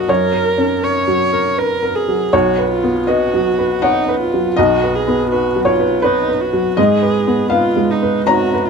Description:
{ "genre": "neoclassical piano and strings", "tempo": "80 BPM", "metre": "3/4", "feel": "rubato", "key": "unclear", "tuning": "A4 = 440 Hz", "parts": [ { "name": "dark viola", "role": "accompaniment", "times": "0.0-8.7 s", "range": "D#4 to C#5", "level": "-19 LUFS", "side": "right 2 dB", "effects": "none" }, { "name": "felt-muted upright piano", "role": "accompaniment", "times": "0.0-8.7 s", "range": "B1 to A#5", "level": "-14 LUFS", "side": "equal", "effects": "none" } ], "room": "little or no reverb", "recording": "close, detailed microphones", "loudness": "-13 LUFS", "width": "side -5 dB against mid", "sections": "0.0-8.7 A section", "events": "none", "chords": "0.0 F#; 2.3 B; 6.8 G#m", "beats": "| 0.09 0.83 1.58 | 2.33 3.08 3.83 | 4.57 5.31 6.04 | 6.78 7.52 8.28" }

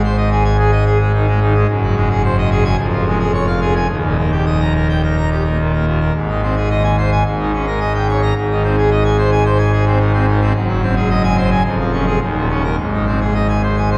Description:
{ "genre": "classical, organ toccata", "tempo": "109 BPM", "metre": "4/4", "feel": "straight", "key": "Ab major", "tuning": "A4 = 441 Hz", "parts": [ { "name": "pipe organ, full organ", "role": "solo", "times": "0.0-14.0 s", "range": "Eb1 to Bb5", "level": "-16 LUFS", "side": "equal", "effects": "none" } ], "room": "wet cathedral reverb, RT60 6.9 s", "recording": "heard from further back in the room", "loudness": "-16 LUFS", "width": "mono", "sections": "0.0-14.0 A section", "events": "none", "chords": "0.0 Ab; 1.7 Ab7/Gb; 2.8 Db/F; 3.9 Eb; 6.1 Ab; 7.3 Eb7/Ab; 8.4 Ab; 10.6 Ab7/Gb; 11.7 Db/F; 12.2 Eb5; 12.8 Ab", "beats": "0.03 0.58 1.13 | 1.68 2.23 2.78 3.34 | 3.90 4.46 5.03 5.59 | 6.15 6.70 7.25 7.80 | 8.36 8.91 9.46 10.01 | 10.56 11.10 11.65 12.21 | 12.78 13.35 13.91" }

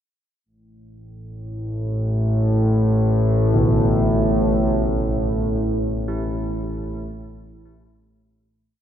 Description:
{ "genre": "dark ambient drone", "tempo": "58 BPM", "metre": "4/4", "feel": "straight", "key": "unclear", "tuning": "A4 = 440 Hz", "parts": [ { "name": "analog drone", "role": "drone", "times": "1.4-8.8 s", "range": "A1 to A2", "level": "-19 LUFS", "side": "equal", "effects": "chorus" }, { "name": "carillon bells", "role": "arpeggios", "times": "3.5-8.8 s", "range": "B2 to E4", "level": "-26 LUFS", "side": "right 1 dB", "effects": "ping-pong delay" } ], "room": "moderate huge ambient reverb, RT60 8.2 s", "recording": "in a vast, echoing space", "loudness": "-18 LUFS", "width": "side -10 dB against mid", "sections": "0.5-8.7 A section", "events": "fade-in on synth drone 0.5-8.7; fade-out on church bells 0.5-8.7; fade-out 4.6-8.7", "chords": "0.5 Asus2", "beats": "| 0.46 1.49 2.52 3.54 | 4.55 5.57 6.60 7.64" }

